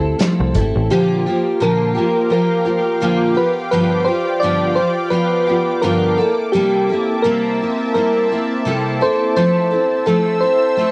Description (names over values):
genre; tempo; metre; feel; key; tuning
indie pop, bedroom pop; 85 BPM; 4/4; swing 55% on 16ths; Bb lydian; A4 = 438 Hz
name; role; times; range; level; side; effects
soft electric-piano-like synth keys; melody; 0.0-10.9 s; G4 to D5; -20 LUFS; equal; subtle chorus, cassette tape, tape echo
mellow tine electric piano; accompaniment; 0.0-0.9 s; A3 to G4; -31 LUFS; equal; none
picked steel-string acoustic guitar; accompaniment; 0.0-10.9 s; G2 to A4; -20 LUFS; equal; ensemble chorus, vibrato effect, cassette tape
picked electric bass; bass; 0.0-0.9 s; Ab1 to D2; -20 LUFS; equal; none
loose indie drum kit; drums; 0.2-0.7 s; hi-hat, kick drum, snare drum; -23 LUFS; equal; cassette tape
lush unison pad; sustained chords; 1.5-10.9 s; Bb3 to E6; -27 LUFS; equal; chorus, cassette tape
room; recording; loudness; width
moderate booth ambience, RT60 0.2 s; home recording on cassette; -17 LUFS; mono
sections
0.9-10.9 A section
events
none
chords
0.0 Fmaj7; 0.9 Bb6; 3.4 G7; 6.2 C13; 9.4 Fmaj7